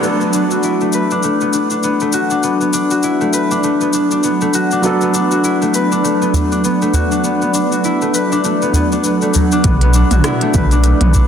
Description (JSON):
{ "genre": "organic downtempo", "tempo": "100 BPM", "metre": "4/4", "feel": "swing 58% on 16ths", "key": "B minor", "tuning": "A4 = 440 Hz", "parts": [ { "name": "felt-muted upright piano", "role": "accompaniment", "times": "0.0-9.6 s", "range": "F#3 to A4", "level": "-22 LUFS", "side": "right 4 dB", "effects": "sidechain pumping, digital delay" }, { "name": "granular cloud pad", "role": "sustained chords", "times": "0.0-11.3 s", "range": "F#3 to D5", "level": "-19 LUFS", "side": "right 3 dB", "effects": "built-in reverb, vintage 12-bit sampler grit, sidechain pumping" }, { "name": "concert harp", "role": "arpeggios", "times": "0.0-11.3 s", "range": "F#3 to B4", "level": "-15 LUFS", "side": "left 3 dB", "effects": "low-pass filter, digital delay" }, { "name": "organic electronic drum kit", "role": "drums", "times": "0.0-11.3 s", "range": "cabasa, hi-hat, rim click, toms", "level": "-22 LUFS", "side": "left 1 dB", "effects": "soft clipping on snare" }, { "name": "udu", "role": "percussion", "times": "6.3-9.5 s", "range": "none", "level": "-17 LUFS", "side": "right 1 dB", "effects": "none" }, { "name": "round analog bass", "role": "bass", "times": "9.6-11.3 s", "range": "B1", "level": "-12 LUFS", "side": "equal", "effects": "tube saturation, sidechain pumping" }, { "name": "electronic kick drum", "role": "drums", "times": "9.6-11.3 s", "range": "none", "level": "-15 LUFS", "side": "equal", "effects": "none" } ], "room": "moderate lush hall reverb, RT60 2.0 s, digital ambience", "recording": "dense, heavily limited modern master", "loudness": "-12 LUFS", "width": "side -8 dB against mid", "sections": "0.0-9.6 A section; 9.6-11.3 B section", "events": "band accent 0.0; filter sweep on ambient pad 0.0-9.6", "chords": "0.0 Bm7" }